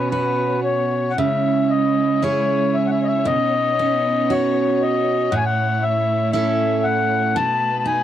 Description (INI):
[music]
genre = celtic folk, Celtic slow air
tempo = 58 BPM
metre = 4/4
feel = rubato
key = unclear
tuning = A4 = 441 Hz
[part]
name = mellow accordion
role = melody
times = 0.0-8.0 s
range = B4 to A5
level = -20 LUFS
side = left 4 dB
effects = none
[part]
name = picked steel-string acoustic guitar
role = accompaniment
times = 0.0-8.0 s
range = A2 to A4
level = -21 LUFS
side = right 6 dB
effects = none
[part]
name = warm chamber string section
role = sustained chords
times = 0.0-8.0 s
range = G#3 to C#5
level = -27 LUFS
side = left 4 dB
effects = none
[sound]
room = little or no reverb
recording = dry, close 1970s-style studio recording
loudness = -17 LUFS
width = side -11 dB against mid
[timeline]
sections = 0.0-8.0 A section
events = none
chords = 0.0 Bsus2; 1.2 C#m; 3.3 Badd9; 5.3 A; 7.4 B7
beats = 0.11 | 1.18 2.22 3.26 4.30 | 5.32 6.34 7.35